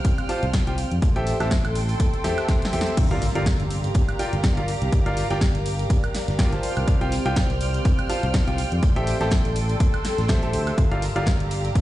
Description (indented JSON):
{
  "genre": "piano house",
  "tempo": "123 BPM",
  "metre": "4/4",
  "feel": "swing 56% on 16ths",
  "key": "G dorian",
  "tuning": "A4 = 440 Hz",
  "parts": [
    { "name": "rich studio violin section", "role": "sustained chords", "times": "0.0-11.8 s", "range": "G4 to F6", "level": "-33 LUFS", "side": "right 3 dB", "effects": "sidechain pumping" },
    { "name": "fingered electric bass", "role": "bass", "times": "0.0-11.8 s", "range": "G1 to F2", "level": "-26 LUFS", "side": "equal", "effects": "tube saturation, sidechain pumping" },
    { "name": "electronic kick drum", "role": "drums", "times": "0.0-11.8 s", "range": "none", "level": "-22 LUFS", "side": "equal", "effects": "none" },
    { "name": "loose indie drum kit", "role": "drums", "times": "0.0-11.8 s", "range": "hi-hat, snare drum", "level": "-42 LUFS", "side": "right 3 dB", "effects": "none" },
    { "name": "punchy analog drum machine", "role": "drums", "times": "0.0-11.8 s", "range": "crash cymbal, hi-hat, snare drum, woodblock", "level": "-31 LUFS", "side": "equal", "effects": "none" },
    { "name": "airy breathy pad", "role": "texture", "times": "0.0-11.8 s", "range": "C4 to E6", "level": "-32 LUFS", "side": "left 1 dB", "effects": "chorus, sidechain pumping" },
    { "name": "clear concert grand piano", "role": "riff", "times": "0.3-11.3 s", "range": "F4 to A5", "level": "-28 LUFS", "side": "equal", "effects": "sidechain pumping, ping-pong delay" },
    { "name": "impact", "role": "sound effects", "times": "3.0-4.9 s", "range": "none", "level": "-31 LUFS", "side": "equal", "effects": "none" }
  ],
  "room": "studio reverb",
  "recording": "played on a big sound system in a bare room, stone room reverb, nothing above 10.5 kHz",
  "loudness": "-20 LUFS",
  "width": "side -15 dB against mid",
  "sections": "0.0-3.0 A section; 3.0-11.8 B section",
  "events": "drum fill 2.5-3.0; band accent 2.8; drop 3.0-11.8; impact 3.0-4.9",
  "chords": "0.0 Csus4; 1.0 Am7; 3.0 Gm7; 6.6 Csus4; 8.8 Am7; 10.8 Gm7"
}